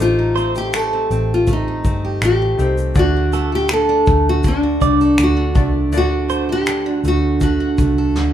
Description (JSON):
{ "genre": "acoustic pop", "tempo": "81 BPM", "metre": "4/4", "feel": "straight", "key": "unclear", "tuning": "A4 = 438 Hz", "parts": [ { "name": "nylon-string guitar", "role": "melody", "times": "0.0-8.3 s", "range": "D4 to A4", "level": "-19 LUFS", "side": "left 1 dB", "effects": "none" }, { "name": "bright upright piano", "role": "accompaniment", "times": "0.0-8.3 s", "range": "A3 to F#5", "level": "-30 LUFS", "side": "left 6 dB", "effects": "none" }, { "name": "picked steel-string acoustic guitar", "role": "accompaniment", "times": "0.0-8.3 s", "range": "D3 to A4", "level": "-21 LUFS", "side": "right 4 dB", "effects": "none" }, { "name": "vintage muted fingered electric bass", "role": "bass", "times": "0.0-8.3 s", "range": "G1 to D2", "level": "-20 LUFS", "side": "equal", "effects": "none" }, { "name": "direct-recorded clean electric guitar", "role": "arpeggios", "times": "0.4-6.5 s", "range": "A4 to D5", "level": "-25 LUFS", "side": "right 6 dB", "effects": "spring reverb" }, { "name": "vintage brush drum kit", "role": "drums", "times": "0.4-8.3 s", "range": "finger snaps, kick drum, shaker, snare drum", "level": "-20 LUFS", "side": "equal", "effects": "none" } ], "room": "moderate large studio reverb, RT60 1.0 s", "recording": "band playing live in one room", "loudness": "-14 LUFS", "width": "side -10 dB against mid", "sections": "0.0-8.3 A section", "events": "drum fill 8.2", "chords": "0.0 Am7b5; 3.0 D" }